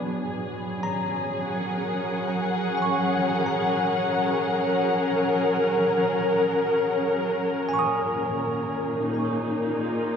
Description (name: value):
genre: ambient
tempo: 62 BPM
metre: 4/4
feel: straight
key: F# major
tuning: A4 = 439 Hz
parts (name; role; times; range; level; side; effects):
- muted studio string section; sustained chords; 0.0-10.2 s; A#2 to F#5; -23 LUFS; left 1 dB; none
- bell-like tine electric piano; arpeggios; 0.0-10.2 s; F#5 to D#6; -32 LUFS; right 2 dB; tape echo
room: wet cathedral reverb, RT60 6.5 s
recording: in a vast, echoing space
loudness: -22 LUFS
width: side -7 dB against mid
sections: 0.1-10.2 A section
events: none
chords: 0.1 F#add9; 7.8 A#sus4